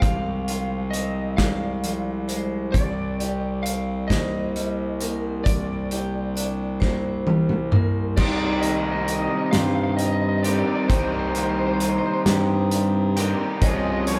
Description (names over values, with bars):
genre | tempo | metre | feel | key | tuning
post-rock | 44 BPM (dotted quarters) | 6/8 | straight | C minor | A4 = 440 Hz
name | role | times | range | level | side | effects
lightly driven lead guitar | melody | 0.0-14.2 s | C5 to F5 | -33 LUFS | equal | none
clean electric guitar | arpeggios | 0.0-14.2 s | C3 to G4 | -35 LUFS | equal | none
vibraphone with hard mallets | arpeggios | 0.0-14.2 s | Eb4 to F5 | -35 LUFS | equal | none
fuzz picked electric bass | bass | 0.0-14.2 s | C2 to G2 | -29 LUFS | equal | overdrive
loose indie drum kit | drums | 0.0-14.2 s | crash cymbal, hi-hat, kick drum, snare drum, toms | -26 LUFS | equal | none
raw garage guitar | riff | 8.2-14.2 s | C3 to Ab4 | -26 LUFS | equal | overdrive
room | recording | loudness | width
wet large studio reverb, RT60 1.1 s | band playing live in one room | -23 LUFS | mono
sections
0.0-8.2 A section; 8.2-14.2 B section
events
drum fill 6.8-8.2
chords
0.0 Fm/C; 2.7 Gm/C; 8.2 Cm; 13.6 Db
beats
| 0.02 1.38 | 2.74 4.10 | 5.46 6.82 | 8.18 9.54 | 10.90 12.26 | 13.62